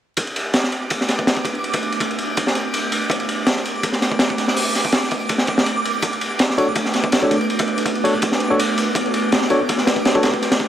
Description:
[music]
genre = drum and bass, jungle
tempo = 164 BPM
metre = 4/4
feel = swing 54% on 16ths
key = B minor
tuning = A4 = 441 Hz
[part]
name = warbly tape-like pad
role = sustained chords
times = 0.8-10.7 s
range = A3 to B4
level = -24 LUFS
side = right 2 dB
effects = chorus, built-in reverb, vintage 12-bit sampler grit
[part]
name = crunchy breakbeat drum kit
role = drums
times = 0.2-10.7 s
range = hi-hat, kick drum, ride cymbal, snare drum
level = -19 LUFS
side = equal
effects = high-pass filter on kick, high-pass filter on cymbals, high-pass filter on hats, high-pass filter on snare, high-pass filter on room
[part]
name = twinkling granular texture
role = texture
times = 0.4-10.7 s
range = D6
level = -27 LUFS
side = right 2 dB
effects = built-in reverb
[part]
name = barky tine electric piano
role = stabs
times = 6.6-10.3 s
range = D4 to C#5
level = -21 LUFS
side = left 1 dB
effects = dub echo
[sound]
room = light reverb, studio reverb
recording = vinyl crackle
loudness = -17 LUFS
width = side -10 dB against mid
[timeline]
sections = 0.2-10.7 A section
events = filter sweep on ambient pad 0.2-10.7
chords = 0.2 Bm7

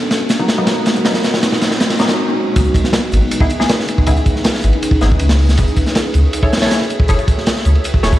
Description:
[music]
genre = drum and bass, jungle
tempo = 159 BPM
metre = 4/4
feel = straight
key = C# minor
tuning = A4 = 440 Hz
[part]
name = crunchy breakbeat drum kit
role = drums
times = 0.0-8.2 s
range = hi-hat, snare drum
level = -32 LUFS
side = right 2 dB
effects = none
[part]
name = riser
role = sound effects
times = 0.0-2.2 s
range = none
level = -25 LUFS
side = right 2 dB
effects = none
[part]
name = crunchy breakbeat drum kit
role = drums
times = 0.1-8.2 s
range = hi-hat, kick drum, ride cymbal, snare drum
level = -15 LUFS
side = equal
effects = none
[part]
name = filtered dub chord stab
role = stabs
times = 0.4-8.1 s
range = F#3 to C#5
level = -22 LUFS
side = left 1 dB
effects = phaser, analog chorus, cassette tape, dub echo
[part]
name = soft dub sub bass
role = bass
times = 2.6-8.1 s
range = E1 to C#2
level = -12 LUFS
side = equal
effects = tube saturation
[sound]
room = moderate lush hall reverb, RT60 2.2 s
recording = played on a big sound system in a bare room, large studio reverb, vinyl crackle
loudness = -12 LUFS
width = side -14 dB against mid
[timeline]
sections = 0.0-2.6 A section; 2.6-8.2 B section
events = build-up 0.0-2.6; drum fill 0.0-2.2; riser 0.0-2.2; break 2.2-2.6; drop 2.6-8.2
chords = 0.0 G#m9; 2.6 C#m9; 5.6 F#m9

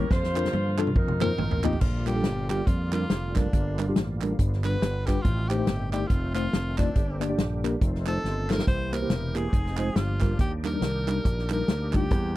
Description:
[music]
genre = uptempo gospel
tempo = 140 BPM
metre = 4/4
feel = swing 61% on 8ths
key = Bb major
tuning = A4 = 440 Hz
[part]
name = clear saxophone section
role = melody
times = 0.0-1.8 s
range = Eb4 to C5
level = -31 LUFS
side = equal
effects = none
[part]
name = mellow tine electric piano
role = accompaniment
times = 0.0-12.4 s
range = G2 to Eb5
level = -29 LUFS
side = left 1 dB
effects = slow stereo tremolo
[part]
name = bright tonewheel organ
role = sustained chords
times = 0.0-12.4 s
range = D3 to Ab4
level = -37 LUFS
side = right 2 dB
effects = fast rotary speaker, chorus vibrato
[part]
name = fingered electric bass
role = bass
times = 0.0-12.4 s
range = E1 to G2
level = -29 LUFS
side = equal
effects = none
[part]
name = natural country drum kit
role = drums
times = 0.1-12.2 s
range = crash cymbal, hi-hat, kick drum, snare drum, toms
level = -26 LUFS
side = equal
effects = none
[part]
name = group handclap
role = percussion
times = 0.4-12.0 s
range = none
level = -38 LUFS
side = right 10 dB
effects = none
[part]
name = bright tenor saxophone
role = melody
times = 1.2-12.4 s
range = D4 to C5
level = -33 LUFS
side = equal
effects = none
[part]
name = mellow French horn section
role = sustained chords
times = 1.8-12.4 s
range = C3 to E4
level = -41 LUFS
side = left 1 dB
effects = none
[sound]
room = little or no reverb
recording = dry, close 1970s-style studio recording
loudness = -23 LUFS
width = side -16 dB against mid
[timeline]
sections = 0.0-1.8 A section; 1.8-12.4 B section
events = drum fill 0.1-1.8, 8.2-8.7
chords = 0.1 Bb/F; 1.0 F7sus4; 1.8 Bb6; 3.5 Gm7; 4.4 G7; 5.2 Am7b5; 6.1 F7; 7.0 Gm; 7.8 F7; 8.7 C7; 9.5 Fm7; 10.0 Gm7; 10.4 Ebmaj7

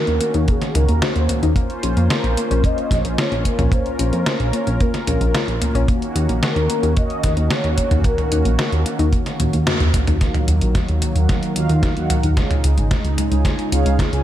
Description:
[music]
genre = synthwave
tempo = 111 BPM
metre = 4/4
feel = straight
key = unclear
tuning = A4 = 440 Hz
[part]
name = expressive synth lead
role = melody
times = 0.0-9.6 s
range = Ab4 to Eb5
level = -25 LUFS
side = equal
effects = ensemble chorus, cassette tape, ping-pong delay
[part]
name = brassy analog pad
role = sustained chords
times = 0.0-14.2 s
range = Db3 to C5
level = -26 LUFS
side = equal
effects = chorus, sidechain pumping
[part]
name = chorused synth bass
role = bass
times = 0.1-14.2 s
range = Ab1 to F2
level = -18 LUFS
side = equal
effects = none
[part]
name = detuned 8-bit digital drum machine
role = drums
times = 0.1-14.2 s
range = hi-hat, snare drum, toms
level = -22 LUFS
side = equal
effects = gated reverb
[part]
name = warbly dusty pluck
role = arpeggios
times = 0.2-14.1 s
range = Ab3 to Gb4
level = -27 LUFS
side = left 5 dB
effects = chorus, cassette tape, tape echo
[part]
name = kick drum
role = drums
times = 0.5-14.1 s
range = none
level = -19 LUFS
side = equal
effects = none
[part]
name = mellow synth brass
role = stabs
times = 10.2-14.2 s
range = Db3 to Ab5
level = -24 LUFS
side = right 2 dB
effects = chorus, tape echo
[sound]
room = light reverb, digital ambience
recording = none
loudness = -16 LUFS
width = side -12 dB against mid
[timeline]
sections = 0.0-10.2 A section; 10.2-14.2 B section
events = drum fill 9.4-10.2, 10.2-14.2; band accent 9.7; filter sweep on analog polysynth 10.2-14.2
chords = 0.0 Ebm7; 1.6 Bbmadd9; 5.9 Ebm7; 10.2 Ebmadd9; 12.4 Dbadd9

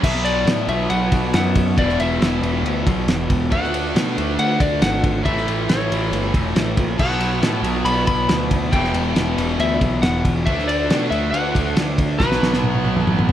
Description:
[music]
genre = classic rock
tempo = 138 BPM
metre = 4/4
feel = straight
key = B minor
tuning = A4 = 440 Hz
[part]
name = clean lap steel guitar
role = melody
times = 0.0-13.3 s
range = B4 to B5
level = -24 LUFS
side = left 3 dB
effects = none
[part]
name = raw garage guitar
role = riff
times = 0.0-13.3 s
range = E2 to D4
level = -22 LUFS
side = equal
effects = overdrive
[part]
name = fuzz picked electric bass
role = bass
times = 0.0-13.3 s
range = E1 to B2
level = -23 LUFS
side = right 1 dB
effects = overdrive
[part]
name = cloth-damped thuddy drum kit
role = drums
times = 0.0-13.3 s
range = crash cymbal, kick drum, ride cymbal, snare drum, toms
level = -21 LUFS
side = equal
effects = none
[sound]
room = light reverb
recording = none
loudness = -16 LUFS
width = side -11 dB against mid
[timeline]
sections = 0.0-13.3 A section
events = drum fill 12.2-13.3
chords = 0.0 Bm; 1.8 E5; 3.5 D; 5.3 A; 7.0 Bm; 8.7 Em; 10.5 D; 12.2 B5

